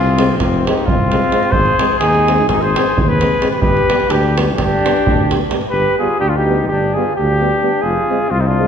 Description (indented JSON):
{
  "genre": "balkan folk, Balkan brass band",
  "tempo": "257 BPM (eighths)",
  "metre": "9/8",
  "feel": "straight",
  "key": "G phrygian dominant",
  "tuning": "A4 = 440 Hz",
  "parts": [
    { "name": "warm flugelhorn", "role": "melody", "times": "0.0-8.7 s", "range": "Eb4 to C5", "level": "-16 LUFS", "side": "equal", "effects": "none" },
    { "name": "warm flugelhorn", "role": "second line", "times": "0.0-8.7 s", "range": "C4 to Ab4", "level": "-21 LUFS", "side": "left 3 dB", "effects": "none" },
    { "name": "dark tuba", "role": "bass", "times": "0.0-8.7 s", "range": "F1 to Eb2", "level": "-19 LUFS", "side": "equal", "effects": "none" },
    { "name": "mellow euphonium", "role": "accompaniment", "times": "0.2-8.7 s", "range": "B3 to C4", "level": "-25 LUFS", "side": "left 7 dB", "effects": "none" },
    { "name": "mellow trombone", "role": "accompaniment", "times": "0.2-8.7 s", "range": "G3 to Ab3", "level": "-24 LUFS", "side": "right 5 dB", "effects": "none" },
    { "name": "davul", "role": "percussion", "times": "0.2-5.7 s", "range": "none", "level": "-19 LUFS", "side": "right 2 dB", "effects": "none" }
  ],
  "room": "wet concert hall reverb, RT60 1.9 s",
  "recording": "recorded in a church or concert hall",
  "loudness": "-12 LUFS",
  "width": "side -8 dB against mid",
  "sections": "0.0-5.7 A section; 5.7-8.7 A section",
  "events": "none",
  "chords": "0.0 Fm; 1.5 Ab; 3.6 G; 7.8 Fm",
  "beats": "0.12 0.35 0.59 0.82 1.05 1.28 | 1.52 1.75 1.98 2.22 2.45 2.68 2.92 3.15 3.38 | 3.61 3.85 4.08 4.31 4.55 4.78 5.01 5.25 5.48 | 5.71 5.95 6.18 6.41 6.65 6.88 7.11 7.35 7.58 | 7.82 8.05 8.29 8.52"
}